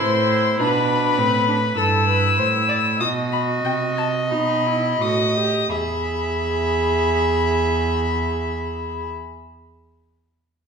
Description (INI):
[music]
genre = classical, baroque-style fugue for string quartet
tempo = 41-54 BPM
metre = 4/4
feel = straight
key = unclear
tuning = A4 = 438 Hz
[part]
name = dark violin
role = melody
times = 0.0-9.1 s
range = G5 to E6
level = -23 LUFS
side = left 8 dB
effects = none
[part]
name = dark violin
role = second line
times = 0.0-9.1 s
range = A4 to E5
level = -24 LUFS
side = equal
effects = none
[part]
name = warm viola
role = accompaniment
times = 0.0-9.1 s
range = C4 to G#4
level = -24 LUFS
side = right 4 dB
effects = none
[part]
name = dark cello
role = bass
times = 0.0-9.1 s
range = E2 to C3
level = -24 LUFS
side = right 3 dB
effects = none
[sound]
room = wet recital hall reverb, RT60 1.3 s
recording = recorded in a church or concert hall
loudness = -18 LUFS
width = side -6 dB against mid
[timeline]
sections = 0.0-5.7 A section; 5.7-10.7 B section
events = slowing down 0.0-5.7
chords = 0.0 Am; 0.6 Em; 3.0 B7; 5.7 E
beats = | 0.60 1.77 3.00 4.32 | 5.73 7.17 8.62